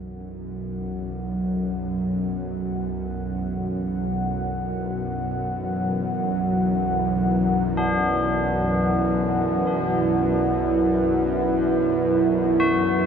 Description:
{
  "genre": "dark ambient drone",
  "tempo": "free time",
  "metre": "none",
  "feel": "none",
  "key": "unclear",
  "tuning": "A4 = 441 Hz",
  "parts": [
    { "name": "deep dark ambient pad", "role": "sustained chords", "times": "0.0-13.1 s", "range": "E4 to F#5", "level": "-24 LUFS", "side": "right 1 dB", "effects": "chorus, built-in reverb" },
    { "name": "bowed-like drone", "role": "drone", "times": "0.0-13.1 s", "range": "B1 to F#2", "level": "-24 LUFS", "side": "equal", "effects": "built-in reverb" },
    { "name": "tubular bells", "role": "arpeggios", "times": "7.8-13.1 s", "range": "D4 to F#4", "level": "-27 LUFS", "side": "left 2 dB", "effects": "tape echo" }
  ],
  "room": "wet cathedral reverb, RT60 6.2 s",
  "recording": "dreamy mix soaked in reverb",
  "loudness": "-21 LUFS",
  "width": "side -7 dB against mid",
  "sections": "0.0-13.1 A section",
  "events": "fade-in on tubular bells 0.0-13.1; filter sweep on synth drone 0.0-13.1",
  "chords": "0.0 E5"
}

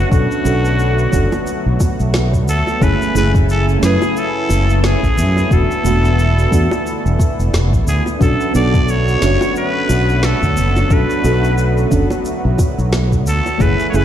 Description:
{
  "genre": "sunset chillout",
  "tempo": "89 BPM",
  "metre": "4/4",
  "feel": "swing 58% on 16ths",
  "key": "B dorian",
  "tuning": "A4 = 439 Hz",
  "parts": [
    { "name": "trumpet with straight mute", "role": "melody", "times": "0.0-14.0 s", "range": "F#4 to D5", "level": "-21 LUFS", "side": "equal", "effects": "vintage 12-bit sampler grit, ping-pong delay" },
    { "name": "mellow FM electric piano", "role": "accompaniment", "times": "0.0-14.0 s", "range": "A3 to C#5", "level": "-20 LUFS", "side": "moving between left 4 dB and right 3 dB", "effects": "chorus, auto-pan, tape echo" },
    { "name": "lush unison pad", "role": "sustained chords", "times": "0.0-14.0 s", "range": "C#3 to G#5", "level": "-23 LUFS", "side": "equal", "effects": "chorus" },
    { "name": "mellow fretless electric bass", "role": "bass", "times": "0.0-14.0 s", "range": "E1 to F#2", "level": "-15 LUFS", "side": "equal", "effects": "none" },
    { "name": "electronic kick drum", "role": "drums", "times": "0.1-13.8 s", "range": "none", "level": "-16 LUFS", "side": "equal", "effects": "none" },
    { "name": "electronic shaker and snare drum", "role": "drums", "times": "0.1-14.0 s", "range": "none", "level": "-27 LUFS", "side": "equal", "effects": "none" },
    { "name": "bongos", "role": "percussion", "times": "1.3-13.6 s", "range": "none", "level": "-25 LUFS", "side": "right 1 dB", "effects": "none" }
  ],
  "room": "light reverb",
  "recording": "played on a big sound system in a bare room, stone room reverb",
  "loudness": "-13 LUFS",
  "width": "side -10 dB against mid",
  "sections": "0.0-14.0 A section",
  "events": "none",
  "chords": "0.0 Bm7; 2.8 F#m9; 5.5 E7sus4; 8.2 Bm7"
}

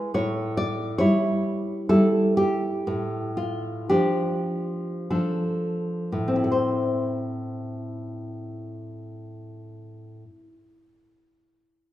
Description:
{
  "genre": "romantic piece for solo classical guitar",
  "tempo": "40-71 BPM",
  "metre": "3/4",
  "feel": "rubato",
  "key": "A minor",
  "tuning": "A4 = 440 Hz",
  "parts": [
    { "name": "nylon-string guitar", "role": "solo", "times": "0.0-10.6 s", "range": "A2 to D5", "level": "-23 LUFS", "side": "equal", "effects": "none" }
  ],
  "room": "wet recital hall reverb, RT60 1.7 s",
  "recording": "minimal, uncompressed stereo recording",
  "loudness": "-22 LUFS",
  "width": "side -13 dB against mid",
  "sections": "0.0-6.5 A section; 6.5-10.4 B section",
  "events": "slowing down 0.0-6.5",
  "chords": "0.1 A7; 2.9 Dm/A; 6.5 Am"
}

